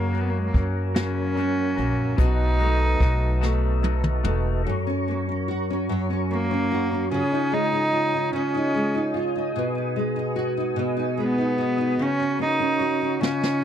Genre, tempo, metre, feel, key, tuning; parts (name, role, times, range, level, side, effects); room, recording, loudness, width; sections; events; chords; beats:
six-eight pop ballad; 49 BPM (dotted quarters); 6/8; straight; F# major from 4.7 s; A4 = 444 Hz
rich cello; melody; 0.0-13.6 s; G#3 to D#4; -24 LUFS; equal; slapback echo
nylon-string guitar; accompaniment; 0.0-13.6 s; F#2 to F#4; -26 LUFS; equal; double-tracked left and right
percussive tonewheel organ; sustained chords; 0.0-13.6 s; C#4 to D#6; -31 LUFS; right 2 dB; chorus vibrato, slow rotary speaker
twangy electric guitar; arpeggios; 0.0-4.7 s; F#2 to F#4; -34 LUFS; left 16 dB; lush chorus
upright bass; bass; 0.0-4.6 s; E1 to F#2; -23 LUFS; equal
jazz brush drum kit; drums; 0.1-4.4, 13.2-13.6 s; hi-hat, kick drum, snare drum, toms; -23 LUFS; equal
light reverb; dry, close 1970s-style studio recording; -21 LUFS; side -9 dB against mid
0.0-4.7 A section; 4.7-13.6 B section
drum fill 3.4-4.7, 13.2-13.6
0.0 F#; 2.2 B7; 4.7 F#; 7.1 C#add9; 9.6 B6; 12.0 F#/C#
0.96 | 2.19 3.42 | 4.66 5.89 | 7.12 8.35 | 9.56 10.78 | 12.00 13.22